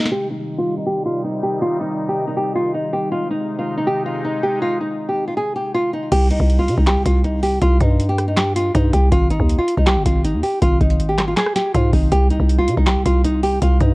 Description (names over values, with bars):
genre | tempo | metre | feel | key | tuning
hip hop, trap | 160 BPM | 4/4 | half-time | C minor | A4 = 440 Hz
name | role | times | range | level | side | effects
nylon-string guitar | melody | 0.0-13.9 s | Eb4 to Ab4 | -20 LUFS | equal | low-pass filter, digital delay
sweeping resonant pad | sustained chords | 0.0-6.1 s | C3 to Eb4 | -26 LUFS | left 1 dB | chorus, low-pass filter
booming analog drum machine | drums | 0.1, 6.1-13.9 s | crash cymbal, handclaps, hi-hat, kick drum, rim click, snare drum | -17 LUFS | equal | none
growling 808-style bass | bass | 6.1-13.9 s | G1 to C3 | -19 LUFS | equal | none
room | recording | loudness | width
little or no reverb | worn, warbling old tape, cassette tape, warbly pitch drift | -16 LUFS | side -23 dB against mid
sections
0.1-6.1 A section; 6.1-13.9 B section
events
filter sweep 0.1-6.1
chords
0.1 Cm; 3.1 Ab; 6.1 C5; 9.1 Ab5; 12.1 C5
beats
| 0.12 0.49 0.87 1.24 | 1.62 1.99 2.37 2.74 | 3.12 3.49 3.87 4.24 | 4.62 4.99 5.37 5.74 | 6.12 6.49 6.87 7.24 | 7.62 7.99 8.37 8.74 | 9.12 9.49 9.87 10.24 | 10.62 10.99 11.37 11.74 | 12.12 12.49 12.87 13.24 | 13.62